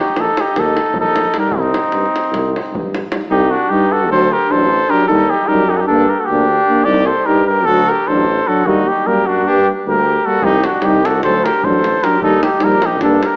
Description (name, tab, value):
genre	balkan folk, Balkan brass band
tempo	303 BPM (eighths)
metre	9/8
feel	straight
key	C dorian sharp4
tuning	A4 = 440 Hz
part	cornet with cup mute	melody	0.0-13.4 s	Eb4 to D5	-15 LUFS	equal	none
part	mellow trumpet	second line	0.0-13.4 s	C4 to A4	-21 LUFS	equal	none
part	davul	percussion	0.1-3.3, 10.4-13.3 s	none	-23 LUFS	equal	none
part	warm tuba	bass	0.2-13.2 s	A1 to G2	-18 LUFS	equal	none
part	clear euphonium	accompaniment	1.3-13.2 s	Bb3 to Eb4	-20 LUFS	equal	none
part	mellow euphonium	accompaniment	1.4-13.2 s	F#3 to Bb3	-21 LUFS	equal	none
room	moderate concert hall reverb, RT60 1.9 s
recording	worn, warbling old tape, cassette tape, warbly pitch drift, small speaker sound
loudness	-12 LUFS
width	side -32 dB against mid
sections	0.0-3.3 A section; 3.3-13.4 B section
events	none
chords	0.0 Eb; 1.5 Cm; 4.1 D; 5.1 Eb; 5.9 Gm; 6.9 Cm; 7.7 D; 8.7 Eb; 9.4 Gm; 10.4 Cm; 11.2 D; 12.2 Eb